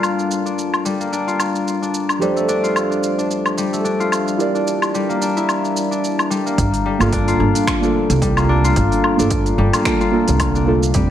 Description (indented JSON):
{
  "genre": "organic downtempo",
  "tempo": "110 BPM",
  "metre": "4/4",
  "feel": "swing 56% on 16ths",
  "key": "G dorian",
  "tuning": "A4 = 440 Hz",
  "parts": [
    { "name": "muted felt-like synth keys", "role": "accompaniment", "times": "0.0-10.8 s", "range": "F3 to D5", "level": "-22 LUFS", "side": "right 4 dB", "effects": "chorus, sidechain pumping, tape echo" },
    { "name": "concert harp", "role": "arpeggios", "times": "0.0-11.1 s", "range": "G3 to F4", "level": "-19 LUFS", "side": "left 3 dB", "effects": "low-pass filter, tape echo" },
    { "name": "organic electronic drum kit", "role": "drums", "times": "0.0-11.1 s", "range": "finger snaps, hi-hat, shaker, woodblock", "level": "-24 LUFS", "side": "equal", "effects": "small room ambience" },
    { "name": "upright bass", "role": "bass", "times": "6.6-11.1 s", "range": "F1 to C2", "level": "-18 LUFS", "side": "right 1 dB", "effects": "sidechain pumping" },
    { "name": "electronic kick drum", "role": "drums", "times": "6.6-11.1 s", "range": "none", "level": "-23 LUFS", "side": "right 1 dB", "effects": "overdrive, small room ambience" }
  ],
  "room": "moderate recital hall reverb, RT60 1.5 s, studio ambience",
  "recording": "none",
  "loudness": "-15 LUFS",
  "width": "side -11 dB against mid",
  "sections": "0.0-6.6 A section; 6.6-11.1 B section",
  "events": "none",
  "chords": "0.0 Gm9; 2.2 F69; 4.4 Gm6; 6.6 Gm9"
}